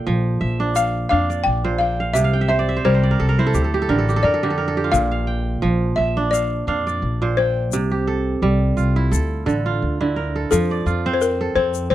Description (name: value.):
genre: west african traditional, West African string and xylophone music.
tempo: 86 BPM.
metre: 4/4.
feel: swing 55% on 16ths.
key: unclear.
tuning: A4 = 439 Hz.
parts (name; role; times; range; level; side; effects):
balafon; melody; 0.0-11.9 s; A4 to G5; -21 LUFS; left 4 dB; none.
kora; arpeggios; 0.0-11.9 s; Bb2 to G5; -21 LUFS; right 3 dB; none.
upright bass; bass; 0.1-11.9 s; A1 to F2; -22 LUFS; left 1 dB; none.
egg shaker; percussion; 0.8-11.9 s; none; -32 LUFS; left 22 dB; none.
room: little or no reverb.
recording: dry, close 1970s-style studio recording.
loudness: -17 LUFS.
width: side -13 dB against mid.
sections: 0.0-10.5 A section; 10.5-11.9 B section.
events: kora fill 2.2-4.9.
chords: 0.0 Bb; 2.2 C; 3.5 Dm; 4.9 Bb; 7.7 C5; 9.1 Dm; 10.5 F.